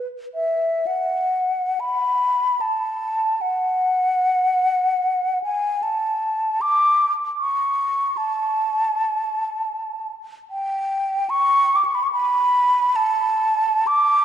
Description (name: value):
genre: classical, free, expressive piece for unaccompanied flute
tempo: 49-78 BPM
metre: 3/4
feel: rubato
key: unclear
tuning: A4 = 440 Hz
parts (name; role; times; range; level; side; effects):
- mellow hollow concert flute; solo; 0.0-14.2 s; E5 to D6; -18 LUFS; equal; none
room: wet church reverb, RT60 2.6 s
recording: dark, warm production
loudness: -18 LUFS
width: side -10 dB against mid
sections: 0.9-14.2 A section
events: none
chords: none